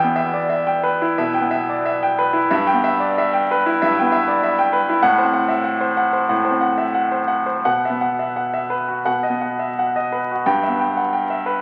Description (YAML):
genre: classical, romantic character piece for solo piano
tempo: 82-99 BPM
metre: 4/4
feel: rubato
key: E minor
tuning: A4 = 440 Hz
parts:
  - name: clear baby grand piano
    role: solo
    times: 0.0-11.6 s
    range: E2 to G5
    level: -19 LUFS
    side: equal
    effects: none
room: wet recital hall reverb, RT60 1.5 s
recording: very old 78 rpm record, vinyl crackle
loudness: -19 LUFS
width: mono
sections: 0.0-11.6 A section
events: none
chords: 0.0 Em; 2.5 Em/G; 5.0 F#dim/A; 7.6 Bsus4; 9.0 B; 10.4 Em/G